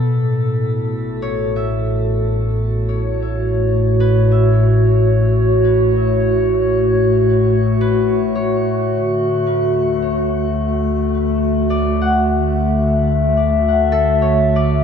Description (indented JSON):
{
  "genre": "ambient",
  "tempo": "54 BPM",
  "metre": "4/4",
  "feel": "straight",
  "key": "unclear",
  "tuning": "A4 = 440 Hz",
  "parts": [
    { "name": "warbly tape-like pad", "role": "sustained chords", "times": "0.0-14.8 s", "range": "A2 to E5", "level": "-14 LUFS", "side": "equal", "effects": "chorus, built-in reverb, shimmer reverb" },
    { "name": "deep rumbling drone", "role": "bass", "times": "1.1-14.8 s", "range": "A1 to D2", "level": "-24 LUFS", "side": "right 1 dB", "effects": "built-in reverb" },
    { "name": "concert harp", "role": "arpeggios", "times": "1.2-14.8 s", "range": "A4 to F#5", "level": "-27 LUFS", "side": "left 4 dB", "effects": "ping-pong delay, shimmer reverb" }
  ],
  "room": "wet plate reverb, RT60 2.5 s",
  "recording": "dreamy mix soaked in reverb, cassette tape",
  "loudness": "-14 LUFS",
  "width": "side -7 dB against mid",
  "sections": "0.0-14.8 A section",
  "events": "none",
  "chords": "0.1 A6; 8.9 Dadd9"
}